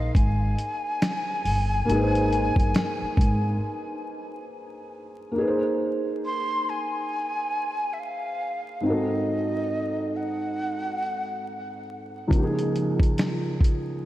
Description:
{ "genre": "lo-fi hip hop", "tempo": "69 BPM", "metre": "4/4", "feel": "swing 61% on 16ths", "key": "Ab major", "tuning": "A4 = 440 Hz", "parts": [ { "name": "breathy jazz flute", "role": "melody", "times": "0.0-11.9 s", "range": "Eb5 to C6", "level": "-29 LUFS", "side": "left 1 dB", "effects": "low-pass filter, diffuse ambient delay" }, { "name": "felt-muted upright piano", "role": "accompaniment", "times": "0.0-14.1 s", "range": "Db2 to C5", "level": "-28 LUFS", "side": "equal", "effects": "cassette tape, low-pass filter" }, { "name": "upright bass", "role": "bass", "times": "0.0-3.6 s", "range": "G1 to Ab1", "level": "-25 LUFS", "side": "equal", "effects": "none" }, { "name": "lo-fi sampler-style drum kit", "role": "drums", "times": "0.1-3.4, 12.3-13.9 s", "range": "hi-hat, kick drum, snare drum", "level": "-23 LUFS", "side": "equal", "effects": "none" } ], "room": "wet lush hall reverb, RT60 2.6 s", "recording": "dreamy mix soaked in reverb, vinyl crackle", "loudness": "-23 LUFS", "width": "side -14 dB against mid", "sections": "0.0-5.4 A section; 5.4-14.1 B section", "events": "break 3.6-5.4", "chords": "0.0 Abadd9; 8.8 Ab7b9; 12.3 Dbadd9", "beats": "0.14 1.01 | 1.88 2.75 3.61 4.48 | 5.35 6.22 7.09 7.96 | 8.83 9.70 10.57 11.44 | 12.31 13.18 14.05" }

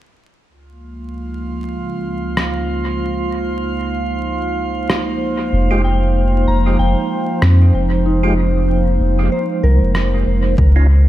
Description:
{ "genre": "ambient dub", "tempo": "95 BPM", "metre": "4/4", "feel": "swing 56% on 16ths", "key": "unclear", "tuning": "A4 = 444 Hz", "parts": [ { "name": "warbly tape-like pad", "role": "sustained chords", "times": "0.8-11.1 s", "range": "Db2 to C5", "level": "-20 LUFS", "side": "right 1 dB", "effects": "chorus, built-in reverb" }, { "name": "drifting glass-harmonics texture", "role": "texture", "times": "1.2-10.6 s", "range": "F4 to F5", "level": "-26 LUFS", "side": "right 4 dB", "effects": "chorus, built-in reverb" }, { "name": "electronic rim click", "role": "drums", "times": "2.4-10.1 s", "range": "none", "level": "-22 LUFS", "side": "equal", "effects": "dub echo" }, { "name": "warm sub bass", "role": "bass", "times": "5.5-11.1 s", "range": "F1 to F2", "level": "-13 LUFS", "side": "equal", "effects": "tube saturation" }, { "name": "percussive tonewheel organ", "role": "stabs", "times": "5.7-10.9 s", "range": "Ab3 to G4", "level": "-26 LUFS", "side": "right 2 dB", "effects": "overdrive, chorus vibrato, stopped rotary speaker, low-pass filter, dub echo" }, { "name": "soft synth bell", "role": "arpeggios", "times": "5.8-11.1 s", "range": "C4 to Bb5", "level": "-24 LUFS", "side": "left 2 dB", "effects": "chorus, dub echo" }, { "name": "electronic kick drum", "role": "drums", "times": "10.6-10.7 s", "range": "none", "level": "-18 LUFS", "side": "equal", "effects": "overdrive" } ], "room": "light reverb, digital ambience", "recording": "vinyl crackle", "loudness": "-14 LUFS", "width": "side -14 dB against mid", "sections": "0.5-10.6 A section", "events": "none", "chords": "0.5 Dbadd9; 5.5 Fmadd9; 10.6 Dbadd9", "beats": "| 0.48 1.11 1.74 2.37 | 3.00 3.64 4.27 4.90 | 5.53 6.16 6.79 7.43 | 8.06 8.69 9.32 9.95 | 10.58" }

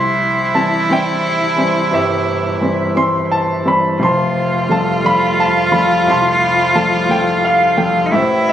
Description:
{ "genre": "acoustic folk-pop ballad", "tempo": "58 BPM (dotted quarters)", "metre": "6/8", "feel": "straight", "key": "unclear", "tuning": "A4 = 440 Hz", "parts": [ { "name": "warm grand piano", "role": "melody", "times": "0.0-8.5 s", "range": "F1 to C6", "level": "-14 LUFS", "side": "equal", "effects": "none" }, { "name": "warm cello", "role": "second line", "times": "0.0-8.5 s", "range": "D#4 to F4", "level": "-16 LUFS", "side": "right 1 dB", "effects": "none" } ], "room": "moderate studio reverb, RT60 0.7 s", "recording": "recorded on a phone in the room, club reverb, compression", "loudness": "-12 LUFS", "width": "side -10 dB against mid", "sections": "0.0-8.5 A section", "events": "none", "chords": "0.0 C; 4.0 Fadd9", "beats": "0.90 | 1.93 2.96 | 4.00 5.03 | 6.07 7.10 | 8.13" }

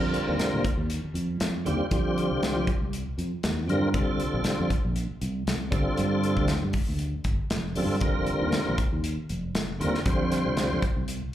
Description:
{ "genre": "electric jazz fusion", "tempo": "118 BPM", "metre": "4/4", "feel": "swing 54% on 16ths", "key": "unclear", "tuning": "A4 = 439 Hz", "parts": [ { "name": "tonewheel organ", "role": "accompaniment", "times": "0.0-10.8 s", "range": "D3 to C5", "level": "-28 LUFS", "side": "equal", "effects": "slow rotary speaker, chorus vibrato, slapback echo" }, { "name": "fretless electric bass", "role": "bass", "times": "0.0-11.2 s", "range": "F1 to F3", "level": "-28 LUFS", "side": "equal", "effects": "analog chorus" }, { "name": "modern studio drum kit", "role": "drums", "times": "0.1-11.2 s", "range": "hi-hat, kick drum, snare drum", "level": "-29 LUFS", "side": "equal", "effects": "none" } ], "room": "small room ambience", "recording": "live gig heard through the venue's PA, club reverb", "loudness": "-24 LUFS", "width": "side -12 dB against mid", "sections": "0.0-11.3 A section", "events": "none", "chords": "0.0 F13sus4; 3.9 C13sus4; 5.7 G9sus4; 8.0 F13sus4", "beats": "0.39 0.90 1.41 | 1.91 2.42 2.93 3.44 | 3.94 4.45 4.96 5.47 | 5.98 6.49 7.00 7.51 | 8.02 8.53 9.04 9.55 | 10.06 10.57 11.08" }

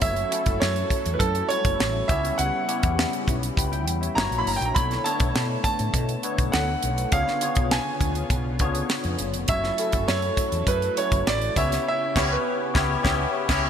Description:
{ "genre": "polished 1980s jazz-funk pop", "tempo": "101 BPM", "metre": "4/4", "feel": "straight", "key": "unclear", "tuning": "A4 = 440 Hz", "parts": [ { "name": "clear grand piano", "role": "melody", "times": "0.0-13.7 s", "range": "A4 to B5", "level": "-27 LUFS", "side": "right 3 dB", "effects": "none" }, { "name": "barky tine electric piano", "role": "accompaniment", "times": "0.0-13.7 s", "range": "G3 to B5", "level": "-28 LUFS", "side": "left 4 dB", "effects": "overdrive, ensemble chorus" }, { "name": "warm analog pad", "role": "sustained chords", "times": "0.0-13.7 s", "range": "C#3 to B4", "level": "-34 LUFS", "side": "left 1 dB", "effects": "chorus" }, { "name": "woody fretless electric bass", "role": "bass", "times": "0.0-13.7 s", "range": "E#1 to B2", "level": "-28 LUFS", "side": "equal", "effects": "none" }, { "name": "tight funk drum kit", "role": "drums", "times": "0.0-13.7 s", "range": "crash cymbal, hi-hat, kick drum, snare drum", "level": "-26 LUFS", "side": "equal", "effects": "none" } ], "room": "light reverb, small room ambience", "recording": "bright 1980s-style digital production", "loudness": "-21 LUFS", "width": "side -8 dB against mid", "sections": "0.0-13.7 A section", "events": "band accent 11.9-13.7", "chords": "0.0 F#m7; 2.1 C#m7b5; 4.2 F#7b13; 4.8 Bm11; 7.1 C#7b9; 9.5 F#m7; 11.6 C#m7b5", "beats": "| 0.02 0.61 1.20 1.80 | 2.39 2.98 3.57 4.16 | 4.75 5.35 5.94 6.53 | 7.12 7.71 8.31 8.90 | 9.49 10.08 10.68 11.27 | 11.86 12.45 13.05 13.64" }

